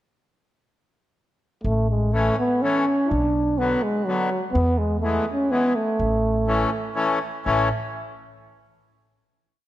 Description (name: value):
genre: alpine folk, alpine dance band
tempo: 124 BPM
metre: 3/4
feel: straight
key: A major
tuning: A4 = 440 Hz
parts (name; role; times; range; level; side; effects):
- warm euphonium; melody; 1.6-7.0 s; F#3 to E4; -22 LUFS; right 1 dB; none
- upright bass; bass; 1.6-7.7 s; A1 to E2; -25 LUFS; equal; none
- accordion; accompaniment; 2.1-7.7 s; D3 to C#4; -25 LUFS; left 3 dB; none
room: moderate concert hall reverb, RT60 1.8 s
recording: dark, warm production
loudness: -20 LUFS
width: side -14 dB against mid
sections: 1.6-7.5 A section; 7.5-8.9 final chord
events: none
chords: 1.6 A; 3.1 Bm; 4.6 E; 6.0 A